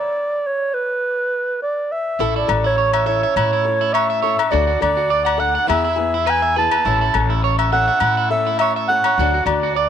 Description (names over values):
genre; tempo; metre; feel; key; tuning
highlife guitar band; 103 BPM; 4/4; swing 54% on 16ths; A major; A4 = 441 Hz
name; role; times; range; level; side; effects
breathy clarinet; melody; 0.0-9.9 s; B4 to A5; -18 LUFS; right 2 dB; none
flamenco guitar; accompaniment; 2.2-9.7 s; E3 to A4; -26 LUFS; left 14 dB; none
combo organ; sustained chords; 2.2-9.9 s; B3 to A4; -31 LUFS; left 11 dB; none
electric guitar at the edge of break-up; arpeggios; 2.2-9.9 s; E4 to F#5; -23 LUFS; right 10 dB; slapback echo
upright bass; bass; 2.2-9.9 s; A1 to A2; -23 LUFS; left 1 dB; none
agogo bells; percussion; 2.5-9.6 s; none; -24 LUFS; left 11 dB; none
room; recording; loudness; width
light reverb, studio ambience; 1960s-style stereo with parts hard left and right; -16 LUFS; side -9 dB against mid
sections
0.0-2.2 A section; 2.2-9.9 B section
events
stop 0.0-2.2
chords
0.0 N.C.; 2.2 A; 4.5 D; 5.7 E; 6.9 A; 9.2 D